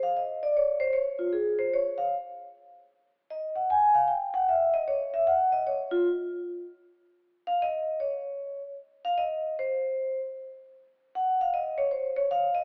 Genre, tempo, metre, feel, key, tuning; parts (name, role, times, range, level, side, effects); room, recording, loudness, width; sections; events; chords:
jazz; 153 BPM; 4/4; swing 67% on 8ths; A4 = 443 Hz
vibraphone with medium mallets; solo; 0.0-12.6 s; F4 to Ab5; -28 LUFS; equal
wet recital hall reverb, RT60 1.5 s; recorded in a church or concert hall, AM radio sound; -28 LUFS; mono
0.0-12.6 A section